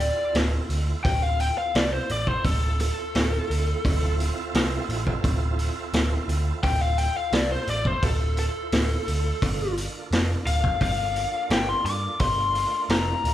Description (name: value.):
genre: blues rock power trio and southern rock.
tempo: 86 BPM.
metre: 4/4.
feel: straight.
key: D minor.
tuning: A4 = 440 Hz.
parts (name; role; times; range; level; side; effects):
lead guitar through a small cranked amp; melody; 0.0-13.3 s; A4 to D6; -26 LUFS; left 2 dB; overdrive.
bright tonewheel organ; sustained chords; 0.0-13.3 s; A3 to C5; -35 LUFS; right 5 dB; overdrive, chorus vibrato, fast rotary speaker.
overdriven picked electric bass; bass; 0.0-13.3 s; D1 to G2; -26 LUFS; equal; none.
vintage drum kit; drums; 0.0-13.3 s; hi-hat, kick drum, snare drum; -26 LUFS; equal; none.
room: moderate large studio reverb, RT60 1.1 s.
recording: band playing live in one room.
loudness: -22 LUFS.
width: side -12 dB against mid.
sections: 0.0-13.3 A section.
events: lead electric guitar solo 0.0-13.3.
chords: 0.0 Dm7; 9.4 Gm7.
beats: 0.35 | 1.05 1.75 2.44 3.14 | 3.84 4.54 5.23 5.93 | 6.63 7.32 8.02 8.72 | 9.41 10.11 10.80 11.50 | 12.20 12.89.